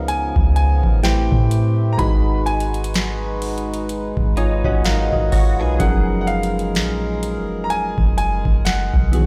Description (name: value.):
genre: contemporary R&B.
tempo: 63 BPM.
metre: 4/4.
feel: swing 58% on 16ths.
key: F# major.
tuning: A4 = 440 Hz.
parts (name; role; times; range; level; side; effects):
bright baby grand piano; melody; 0.0-9.3 s; E#5 to B5; -28 LUFS; equal; none.
soft electric-piano-like synth keys; accompaniment; 0.0-9.3 s; C#3 to G#5; -27 LUFS; equal; chorus.
hand-pumped harmonium; sustained chords; 0.0-9.3 s; C#3 to B4; -31 LUFS; equal; none.
soft 808-style bass; bass; 0.0-9.3 s; F#1 to A2; -22 LUFS; equal; none.
booming analog drum machine; drums; 0.1-9.3 s; hi-hat, kick drum, snare drum; -22 LUFS; equal; none.
direct-recorded clean electric guitar; arpeggios; 4.4-6.0 s; C#4 to G#4; -30 LUFS; equal; ensemble chorus.
room: little or no reverb.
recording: played on a big sound system in a bare room, large studio reverb.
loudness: -19 LUFS.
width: mono.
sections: 0.0-9.3 A section.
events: synth keys fill 3.9-5.8.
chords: 0.0 C#13; 1.0 Am7; 2.0 G#m7; 5.8 F#maj9.